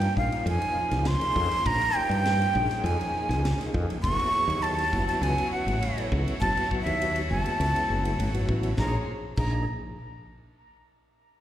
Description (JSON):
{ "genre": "electric jazz fusion", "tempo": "101 BPM", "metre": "4/4", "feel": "straight", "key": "unclear", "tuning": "A4 = 440 Hz", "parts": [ { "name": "breathy jazz flute", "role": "melody", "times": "0.0-9.7 s", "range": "Fb5 to Db6", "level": "-28 LUFS", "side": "right 1 dB", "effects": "slapback echo, tape echo" }, { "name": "tonewheel organ", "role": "accompaniment", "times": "0.0-9.7 s", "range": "F3 to Bb4", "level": "-34 LUFS", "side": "left 1 dB", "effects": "slow rotary speaker, chorus vibrato, slapback echo" }, { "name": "rich chamber string section", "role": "sustained chords", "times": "0.0-9.1 s", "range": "F3 to Db5", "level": "-36 LUFS", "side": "right 1 dB", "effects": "none" }, { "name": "woody fretless electric bass", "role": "bass", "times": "0.0-9.7 s", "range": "Gb1 to G2", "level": "-27 LUFS", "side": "equal", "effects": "none" }, { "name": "crisp fusion drum kit", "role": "drums", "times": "0.0-9.5 s", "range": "crash cymbal, kick drum, ride cymbal, snare drum", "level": "-34 LUFS", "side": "equal", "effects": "none" } ], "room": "light reverb", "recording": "live gig heard through the venue's PA, recital hall reverb", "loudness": "-24 LUFS", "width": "side -12 dB against mid", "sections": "0.0-8.8 A section; 8.8-11.2 B section", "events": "none", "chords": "0.0 Bbm7; 4.0 Gbm9; 8.8 Bb7(no3)", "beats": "0.47 1.06 | 1.66 2.25 2.85 3.44 | 4.04 4.63 5.22 5.82 | 6.41 7.01 7.60 8.19 | 8.78 9.38" }